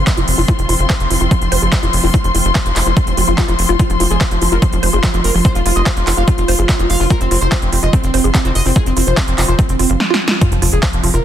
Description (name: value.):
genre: psychedelic trance.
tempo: 145 BPM.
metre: 4/4.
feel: straight.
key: unclear.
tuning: A4 = 440 Hz.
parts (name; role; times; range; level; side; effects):
pulsing gated texture; sustained chords; 0.0-11.2 s; F3 to F4; -24 LUFS; right 3 dB; chorus, built-in reverb, sidechain pumping.
tight sequencer bass; bass; 0.0-11.2 s; F1 to Gb1; -16 LUFS; equal; tube saturation.
muted studio string section; texture; 0.0-10.0 s; F4 to C6; -22 LUFS; left 5 dB; sidechain pumping.
big-room dance drum kit; drums; 0.1-11.2 s; handclaps, hi-hat, snare drum; -20 LUFS; right 1 dB; overdrive.
electronic kick drum; drums; 0.1-10.9 s; none; -16 LUFS; equal; overdrive.
woody wave-folded pluck; riff; 0.2-11.2 s; F4 to F5; -22 LUFS; moving between left 8 dB and right 4 dB; chorus, auto-pan, sidechain pumping, digital delay.
overdriven synth lead; melody; 3.8-11.2 s; F3 to F5; -21 LUFS; right 1 dB; distortion, phaser, sidechain pumping, tape echo.
sub drop; sound effects; 10.4-11.2 s; none; -21 LUFS; equal; none.
room: little or no reverb.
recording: dense, heavily limited modern master.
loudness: -12 LUFS.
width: side -10 dB against mid.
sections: 0.0-10.4 A section.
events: filter sweep on synth arpeggio sound 0.0-10.4; drum fill 10.0-10.4; band accent 10.3; impact 10.4-11.2.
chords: 0.0 F5.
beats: 0.07 | 0.48 0.90 1.31 1.73 | 2.14 2.55 2.97 3.38 | 3.79 4.21 4.62 5.04 | 5.45 5.86 6.28 6.69 | 7.11 7.52 7.93 8.35 | 8.76 9.17 9.59 10.00 | 10.41 10.83 11.24.